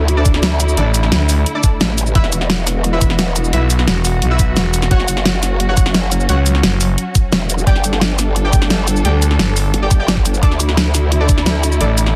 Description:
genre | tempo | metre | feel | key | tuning
dark technical drum and bass | 174 BPM | 4/4 | straight | unclear | A4 = 437 Hz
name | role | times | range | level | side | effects
dark symphonic string section | sustained chords | 0.0-12.2 s | D3 to A4 | -25 LUFS | equal | sidechain pumping
growl bass | bass | 0.0-11.8 s | E1 to D2 | -19 LUFS | equal | chorus, overdrive, sidechain pumping
dubstep drum kit | drums | 0.1-12.1 s | hi-hat, shaker, snare drum | -20 LUFS | equal | none
orchestra-hit-like synth stab | stabs | 0.2-11.9 s | D4 to G5 | -26 LUFS | equal | built-in reverb, dub echo
electronic kick drum | drums | 0.3-11.4 s | none | -16 LUFS | equal | none
growling FM bass | bass | 0.8-1.4, 3.5-7.0, 9.0-9.7, 11.8-12.1 s | E1 to D2 | -17 LUFS | equal | none
room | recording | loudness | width
light reverb | dense, heavily limited modern master | -15 LUFS | mono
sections
0.0-12.2 A section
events
none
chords
0.0 D5; 2.2 E5; 4.9 F#5; 7.7 G5; 10.4 D5

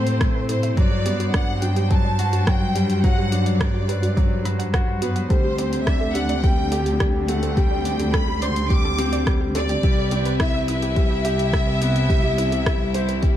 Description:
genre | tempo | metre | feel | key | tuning
piano and strings electronica | 106 BPM | 4/4 | straight | unclear | A4 = 439 Hz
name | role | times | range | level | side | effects
warm symphonic violin section | melody | 0.0-13.4 s | B4 to D6 | -27 LUFS | equal | digital delay
rich chamber string section | sustained chords | 0.0-13.4 s | C3 to C5 | -30 LUFS | left 2 dB | sidechain pumping
warm baby grand piano | riff | 0.0-13.4 s | F#3 to C5 | -26 LUFS | left 2 dB | digital delay
dark studio cello section | bass | 0.0-13.4 s | C2 to A2 | -23 LUFS | equal | sidechain pumping
deep house drum kit | drums | 0.1-13.3 s | hi-hat, rim click | -30 LUFS | right 1 dB | none
warbly dusty pluck | arpeggios | 0.2-13.3 s | F#4 to B5 | -33 LUFS | right 3 dB | chorus, sidechain pumping, digital delay
electronic kick drum | drums | 0.2-13.3 s | none | -20 LUFS | equal | none
room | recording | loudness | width
little or no reverb | dark, warm production | -18 LUFS | side -11 dB against mid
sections
0.0-13.4 A section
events
none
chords
0.0 Amadd9; 0.8 Gmaj7; 5.3 D7sus4; 9.8 Cmaj7

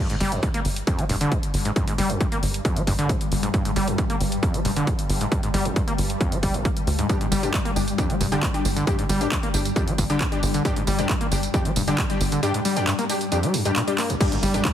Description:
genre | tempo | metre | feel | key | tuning
driving peak-time techno | 135 BPM | 4/4 | straight | unclear | A4 = 439 Hz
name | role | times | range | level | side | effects
overdriven acid bass | riff | 0.0-14.7 s | G1 to Bb3 | -26 LUFS | equal | distortion, lush chorus, sidechain pumping, ping-pong delay
swarming drone | drone | 0.7-14.3 s | G2 to G3 | -31 LUFS | left 2 dB | built-in reverb, sidechain pumping
techno drum kit | drums | 0.1-14.7 s | crash cymbal, handclaps, hi-hat, tambourine | -29 LUFS | right 1 dB | overdrive, studio reverb
tight sequencer bass | bass | 0.2-14.6 s | F1 to D2 | -26 LUFS | equal | sidechain pumping
electronic kick drum | drums | 0.4-14.7 s | none | -24 LUFS | equal | overdrive, studio reverb
rave stab | stabs | 7.1-14.6 s | G3 to G4 | -27 LUFS | left 3 dB | chorus, built-in reverb, sidechain pumping, ping-pong delay
swell and impact | sound effects | 13.6-14.7 s | none | -36 LUFS | equal | none
warbly tape-like pad | texture | 14.4-14.7 s | G3 to D4 | -30 LUFS | right 5 dB | chorus, built-in reverb, sidechain pumping
room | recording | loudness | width
light reverb | heavily compressed radio sound | -20 LUFS | side -10 dB against mid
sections
0.0-14.2 A section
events
filter sweep on acid bass 0.0-14.2; drum fill 14.0; impact 14.2-14.7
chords
0.0 G5

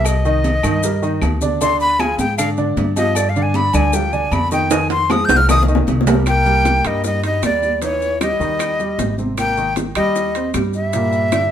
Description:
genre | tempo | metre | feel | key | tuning
Afro-Cuban jazz | 154 BPM | 4/4 | straight | C minor from 6.3 s | A4 = 440 Hz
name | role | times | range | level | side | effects
breathy bright jazz flute | melody | 0.0-11.5 s | Db5 to G6 | -18 LUFS | left 1 dB | none
warm baby grand piano | accompaniment | 0.0-11.5 s | Bb2 to Eb5 | -22 LUFS | right 2 dB | none
upright bass | bass | 0.0-11.5 s | Ab1 to Ab2 | -20 LUFS | equal | none
agogo bells and timbales | percussion | 0.0-11.5 s | none | -25 LUFS | right 5 dB | none
claves | percussion | 0.1-11.5 s | none | -32 LUFS | left 4 dB | none
congas | percussion | 0.1-11.5 s | none | -27 LUFS | equal | none
cowbell and bongos | percussion | 0.1-11.5 s | none | -26 LUFS | left 3 dB | none
maracas | percussion | 0.1-11.5 s | none | -31 LUFS | left 5 dB | none
warm trombone | second line | 6.3-11.5 s | Fb3 to Bb3 | -26 LUFS | left 4 dB | none
room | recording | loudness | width
moderate studio reverb, RT60 1.0 s | minimal, uncompressed stereo recording | -15 LUFS | side -9 dB against mid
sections
0.0-6.3 A section; 6.3-11.5 B section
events
flute solo 0.0-6.3; drum fill 4.7-6.3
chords
0.1 Cm7; 1.6 Ddim; 3.2 G5; 4.7 Fm9; 6.3 Cm9; 7.8 Eb7b9; 9.4 Abmaj9; 10.9 Gm

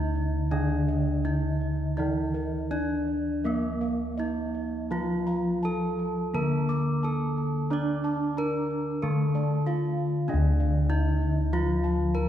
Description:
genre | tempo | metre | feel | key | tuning
Javanese gamelan | 82-97 BPM | 4/4 | straight | D pelog | A4 = 441 Hz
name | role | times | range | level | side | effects
gamelan-type bronze metallophone | melody | 0.0-12.3 s | Bb3 to D5 | -31 LUFS | equal | none
gamelan-type bronze metallophone | accompaniment | 0.0-12.3 s | D3 to D4 | -30 LUFS | right 1 dB | none
gamelan-type bossed gongs | arpeggios | 0.0-12.3 s | Bb4 to D6 | -40 LUFS | left 2 dB | none
gamelan-type bronze metallophone | arpeggios | 0.0-12.3 s | Bb4 to D6 | -40 LUFS | right 4 dB | none
gamelan-type bossed gongs | bass | 0.0-12.3 s | D2 to D5 | -28 LUFS | left 1 dB | none
room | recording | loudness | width
wet concert hall reverb, RT60 2.5 s | heard from further back in the room | -25 LUFS | side -10 dB against mid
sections
0.0-10.3 A section; 10.3-12.3 B section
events
none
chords
none

